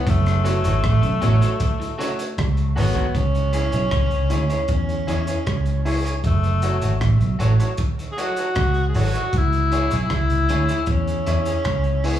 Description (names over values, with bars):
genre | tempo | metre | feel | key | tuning
roots reggae | 78 BPM | 4/4 | straight | F# minor | A4 = 440 Hz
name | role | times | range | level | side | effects
breathy tenor saxophone | melody | 0.0-12.2 s | A3 to G#4 | -25 LUFS | left 1 dB | dub echo, slapback echo
vintage muted fingered electric bass | bass | 0.0-12.2 s | F#1 to E2 | -20 LUFS | right 1 dB | none
crunchy breakbeat drum kit | drums | 0.1-12.2 s | hi-hat, kick drum, rim click | -26 LUFS | equal | dub echo
electric guitar at the edge of break-up | accompaniment | 0.4-12.2 s | E4 to C#5 | -30 LUFS | right 3 dB | lush chorus, dub echo, slapback echo
clean electric guitar | arpeggios | 0.4-2.1 s | A2 to C#3 | -33 LUFS | left 5 dB | slapback echo
clear upright piano | stabs | 0.4-12.2 s | E4 to C#5 | -34 LUFS | left 6 dB | slapback echo
room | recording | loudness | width
studio reverb | live gig heard through the venue's PA, club reverb | -18 LUFS | side -11 dB against mid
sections
0.0-3.2 A section; 3.2-12.2 B section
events
none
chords
0.1 F#m; 3.2 C#m; 6.2 F#m; 9.3 C#m